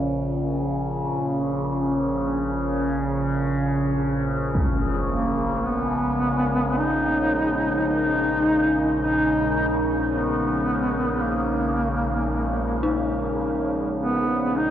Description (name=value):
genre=dark ambient drone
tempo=54 BPM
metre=4/4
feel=straight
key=Bb in sen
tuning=A4 = 440 Hz
part: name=dark analog pad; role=sustained chords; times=0.0-14.7 s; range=Ab3 to Bb4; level=-32 LUFS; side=right 1 dB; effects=chorus, phaser
part: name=overtone-sweeping drone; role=drone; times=0.0-14.7 s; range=Bb1 to Db3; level=-24 LUFS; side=equal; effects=chorus, built-in reverb, phaser
part: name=impact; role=percussion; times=4.5-4.8 s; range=none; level=-28 LUFS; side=equal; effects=low-pass filter on sfx
part: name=warm duduk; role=melody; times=5.1-14.7 s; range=Bb3 to Eb4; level=-23 LUFS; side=equal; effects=diffuse ambient delay
part: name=dark detuned synth bell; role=arpeggios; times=12.8-14.7 s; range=Eb4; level=-28 LUFS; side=left 3 dB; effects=chorus, tremolo, diffuse ambient delay
room=wet huge ambient reverb, RT60 7.4 s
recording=worn, warbling old tape, cassette tape, warbly pitch drift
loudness=-21 LUFS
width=side -10 dB against mid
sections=0.0-14.7 A section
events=fade-in on impacts and reversed cymbals 0.0-14.7; fade-out on analog synth pad 0.0-14.7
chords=0.0 Bbm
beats=| 0.10 1.22 2.33 3.44 | 4.55 5.66 6.77 7.88 | 8.99 10.11 11.22 12.33 | 13.44 14.55